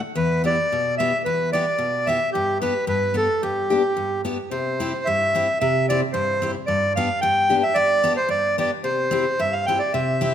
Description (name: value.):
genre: alpine folk, alpine dance band.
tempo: 111 BPM.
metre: 2/4.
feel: straight.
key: G major, C major from 4.5 s.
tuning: A4 = 440 Hz.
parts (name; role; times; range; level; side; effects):
accordion; melody; 0.2-10.3 s; G4 to G5; -20 LUFS; right 1 dB; none.
picked steel-string acoustic guitar; accompaniment; 0.2-10.3 s; E2 to G4; -25 LUFS; left 3 dB; none.
room: moderate concert hall reverb, RT60 1.9 s.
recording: minimal, uncompressed stereo recording.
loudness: -19 LUFS.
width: side -9 dB against mid.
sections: 0.0-4.5 A section; 4.5-10.3 B section.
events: none.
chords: 0.2 Em; 2.3 G; 4.5 C; 6.7 G; 8.8 C.